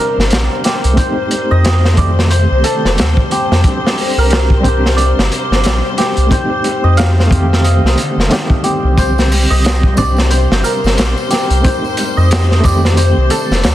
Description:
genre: trip hop.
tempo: 90 BPM.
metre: 4/4.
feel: swing 58% on 16ths.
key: unclear.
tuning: A4 = 439 Hz.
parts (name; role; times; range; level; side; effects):
santur; melody; 0.0-13.7 s; G4 to F5; -18 LUFS; right 1 dB; dub echo.
overdriven reed electric piano; accompaniment; 0.0-13.7 s; D3 to G4; -20 LUFS; right 1 dB; fast tremolo.
warm studio string section; sustained chords; 0.0-13.7 s; C5; -23 LUFS; left 6 dB; none.
Celtic harp; arpeggios; 0.0-13.7 s; C3 to G4; -24 LUFS; left 2 dB; vintage 12-bit sampler grit, ping-pong delay.
round analog bass; bass; 0.2-13.7 s; F1 to F2; -12 LUFS; equal; none.
crunchy breakbeat drum kit; drums; 0.2-13.7 s; hi-hat, kick drum, snare drum; -16 LUFS; equal; none.
tambourine; percussion; 9.0-13.7 s; none; -29 LUFS; left 2 dB; none.
room: small room ambience.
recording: dense, heavily limited modern master, vinyl crackle.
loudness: -10 LUFS.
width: side -13 dB against mid.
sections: 0.0-13.7 A section.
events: none.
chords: 0.0 Csus2; 1.0 F7; 3.6 Csus2; 6.3 F7; 9.0 Csus2; 11.6 F7.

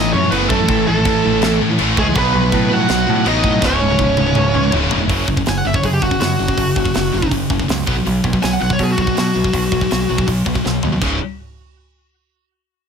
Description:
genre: heavy metal.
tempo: 162 BPM.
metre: 4/4.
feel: straight.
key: C# minor.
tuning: A4 = 441 Hz.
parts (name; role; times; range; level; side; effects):
high-gain lead guitar; melody; 0.0-10.3 s; F#4 to G#5; -20 LUFS; right 1 dB; distortion, ping-pong delay.
high-gain lead guitar; second line; 0.0-4.7 s; G#3 to F#4; -24 LUFS; right 2 dB; distortion.
heavy high-gain guitar; riff; 0.0-11.2 s; C#2 to B3; -21 LUFS; left 13 dB; distortion.
high-gain distorted guitar; riff; 0.0-11.2 s; C#2 to B3; -22 LUFS; right 14 dB; distortion.
scooped high-gain guitar; riff; 0.0-5.1 s; C#2 to B4; -23 LUFS; equal; distortion.
growling picked electric bass; bass; 0.0-11.2 s; C#1 to B2; -21 LUFS; right 1 dB; overdrive.
tight metal drum kit; drums; 0.3-11.1 s; china cymbal, crash cymbal, hi-hat, kick drum, snare drum, toms; -22 LUFS; equal; none.
room: light reverb.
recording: none.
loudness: -14 LUFS.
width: side -7 dB against mid.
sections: 0.0-5.1 A section; 5.1-11.0 B section; 11.0-12.5 C section.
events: half time 0.0-5.1; drum fill 3.6-5.1, 10.6-11.0; lead electric guitar solo 5.1-11.0.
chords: 0.0 A; 2.2 B; 3.6 C#m; 5.1 F#5; 7.9 B5; 11.0 C#5.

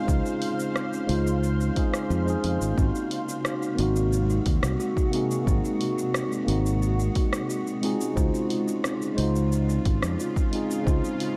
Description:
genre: sunset chillout.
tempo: 89 BPM.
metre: 4/4.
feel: straight.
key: Db major.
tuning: A4 = 440 Hz.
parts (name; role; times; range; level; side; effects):
mellow tine electric piano; accompaniment; 0.0-11.4 s; Ab3 to C5; -31 LUFS; equal; digital delay.
shimmering ambient pad; sustained chords; 0.0-11.4 s; C3 to F5; -36 LUFS; equal; chorus, built-in reverb.
buzzing kalimba; arpeggios; 0.0-11.4 s; C4 to Gb4; -35 LUFS; equal; digital delay.
fingered electric bass; bass; 0.1-11.0 s; Ab1 to F2; -28 LUFS; equal; none.
deep house drum kit; drums; 0.1-11.3 s; hi-hat, rim click, shaker; -36 LUFS; equal; none.
electronic kick drum; drums; 0.1-11.0 s; none; -27 LUFS; equal; none.
room: light reverb.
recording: dark, warm production.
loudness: -25 LUFS.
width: mono.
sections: 0.0-2.8 A section; 2.8-11.4 B section.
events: none.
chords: 0.0 Dbmaj7; 2.8 Ab7; 7.8 Dbmaj7.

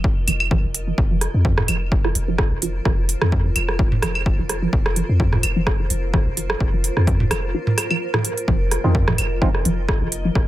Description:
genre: minimal techno.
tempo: 128 BPM.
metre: 4/4.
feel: swing 55% on 16ths.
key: unclear.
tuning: A4 = 441 Hz.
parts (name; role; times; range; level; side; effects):
punchy sub bass; bass; 0.0-10.5 s; F1 to F2; -22 LUFS; equal; sidechain pumping.
electronic kick drum; drums; 0.0-10.5 s; none; -20 LUFS; equal; none.
granular cloud pad; texture; 0.0-10.5 s; F4 to Eb5; -31 LUFS; equal; built-in reverb, sidechain pumping.
resonant blip pluck; riff; 0.3-10.3 s; F3; -26 LUFS; right 1 dB; phaser, lush chorus, sidechain pumping, digital delay.
electronic hi-hat; drums; 0.3-10.2 s; none; -24 LUFS; right 3 dB; overdrive.
garage drum kit; percussion; 0.3-10.5 s; claves, rim click, toms; -24 LUFS; right 2 dB; dub echo.
percussive organ stab; stabs; 8.8-9.5 s; Ab3 to F4; -27 LUFS; right 3 dB; lush chorus, dub echo.
room: little or no reverb.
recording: none.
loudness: -17 LUFS.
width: side -15 dB against mid.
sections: 0.0-10.5 A section.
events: fade-in on ambient pad 0.0-10.5.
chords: 0.0 F7(no3).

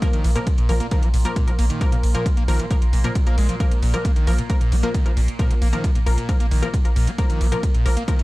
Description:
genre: driving peak-time techno.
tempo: 134 BPM.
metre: 4/4.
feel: straight.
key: unclear.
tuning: A4 = 441 Hz.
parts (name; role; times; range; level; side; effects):
screaming distorted acid line; riff; 0.0-8.2 s; Bb2 to Bb3; -29 LUFS; equal; distortion, wide subtle chorus, sidechain pumping, tape echo.
filtered dub chord stab; stabs; 0.0-8.1 s; F3 to Bb4; -28 LUFS; left 2 dB; chorus, cassette tape, sidechain pumping, tape echo.
overtone-sweeping drone; drone; 0.0-8.2 s; Bb2 to Bb3; -32 LUFS; equal; chorus, built-in reverb, phaser, sidechain pumping.
electronic kick drum; drums; 0.0-8.2 s; none; -20 LUFS; equal; none.
techno drum kit; drums; 0.0-8.2 s; hi-hat, ride cymbal; -36 LUFS; right 2 dB; sidechain pumping on hats, sidechain pumping on cymbals.
saturated sub bass; bass; 0.1-8.2 s; Bb1; -20 LUFS; equal; tube saturation, sidechain pumping, low-pass filter.
room: digital ambience.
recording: dark, warm production.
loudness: -17 LUFS.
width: side -20 dB against mid.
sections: 0.0-8.2 A section.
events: none.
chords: 0.0 Bb5.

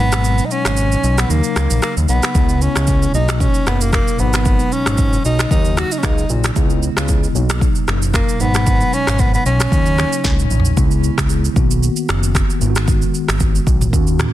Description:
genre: afrobeats.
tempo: 114 BPM.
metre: 4/4.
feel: swing 55% on 16ths.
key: unclear.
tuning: A4 = 440 Hz.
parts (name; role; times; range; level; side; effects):
warm tenor saxophone; melody; 0.0-10.5 s; A#3 to F#4; -20 LUFS; equal; ping-pong delay.
mellow tine electric piano; accompaniment; 0.0-14.3 s; B2 to F#4; -22 LUFS; equal; medium stereo tremolo.
fat analog bass; bass; 0.0-14.3 s; F#1 to D#2; -17 LUFS; equal; none.
afro-pop drum kit; drums; 0.1-14.3 s; finger snaps, kick drum, rim click, shaker, snare drum, toms; -18 LUFS; equal; soft clipping on snare.
room: digital ambience.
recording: dense, heavily limited modern master.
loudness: -13 LUFS.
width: side -14 dB against mid.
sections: 0.0-10.8 A section; 10.8-14.3 B section.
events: break 0.0-2.4; drum fill 10.2-10.8.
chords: 0.0 G#m7; 1.3 D#m7; 2.4 C#m7; 3.1 Bmaj7; 4.2 G#m7; 5.5 D#m7; 6.6 C#m7; 7.3 Bmaj7; 8.4 G#m7; 9.7 D#m7; 10.8 C#m7; 11.6 Bmaj7; 12.6 G#m7.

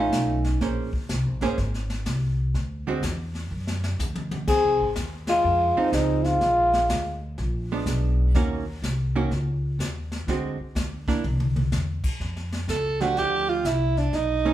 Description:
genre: jazz, small-group swing and bop.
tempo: 124 BPM.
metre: 4/4.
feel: swing 66% on 8ths.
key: unclear.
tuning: A4 = 440 Hz.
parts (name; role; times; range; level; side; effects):
mellow trombone; melody; 0.0-0.5, 4.5-7.2 s; Eb4 to Ab4; -21 LUFS; left 2 dB; none.
growling alto saxophone; second line; 0.0-0.4, 4.5-7.2, 12.7-14.5 s; Ab3 to A4; -27 LUFS; right 4 dB; none.
archtop guitar, miked and amplified; accompaniment; 0.0-14.5 s; D3 to C5; -27 LUFS; right 4 dB; none.
upright bass; bass; 0.0-14.5 s; Ab1 to F#2; -26 LUFS; equal; none.
jazz brush drum kit; drums; 0.1-14.5 s; brushed snare drum, crash cymbal, hi-hat, kick drum, ride cymbal, snare drum, toms; -31 LUFS; left 1 dB; none.
room: moderate large studio reverb, RT60 0.9 s.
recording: band playing live in one room.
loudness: -22 LUFS.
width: side -13 dB against mid.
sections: 0.0-12.2 A section; 12.2-14.5 B section.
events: drum fill 3.5-4.5, 11.2-11.7; band accent 5.2; alto saxophone solo 12.2-14.5.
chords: 0.0 Cb9; 0.6 Bbm9; 2.5 D; 4.5 Dbmaj9; 6.4 Bb7b9; 8.3 Ebm7; 10.3 D7#11; 11.2 C; 12.2 F69.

